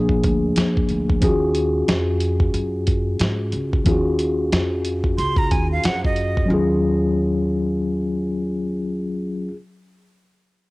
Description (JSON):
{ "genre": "hip hop, jazz-hop", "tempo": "91 BPM", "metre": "4/4", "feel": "swing 61% on 16ths", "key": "Eb minor", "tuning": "A4 = 439 Hz", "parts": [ { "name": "mellow tine electric piano", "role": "accompaniment", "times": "0.0-9.6 s", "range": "F3 to Ab4", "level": "-21 LUFS", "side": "left 1 dB", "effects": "medium stereo tremolo" }, { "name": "upright bass", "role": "bass", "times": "0.0-9.5 s", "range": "Bb1 to Ab2", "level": "-24 LUFS", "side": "equal", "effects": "none" }, { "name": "dusty soul sampler-style drum kit", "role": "drums", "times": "0.1-6.5 s", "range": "hi-hat, kick drum, snare drum", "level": "-21 LUFS", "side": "equal", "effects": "cassette tape" }, { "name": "breathy bright jazz flute", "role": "second line", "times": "5.2-6.5 s", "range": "Eb5 to C6", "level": "-24 LUFS", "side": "right 2 dB", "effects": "none" } ], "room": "light reverb, studio reverb", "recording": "home recording on cassette", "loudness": "-18 LUFS", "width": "side -21 dB against mid", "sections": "0.0-6.5 A section; 6.5-9.1 B section", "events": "none", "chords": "0.0 Bb7; 1.2 Ebm11", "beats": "0.56 | 1.22 1.88 2.54 3.20 | 3.86 4.52 5.18 5.84 | 6.50 7.16 7.82 8.48" }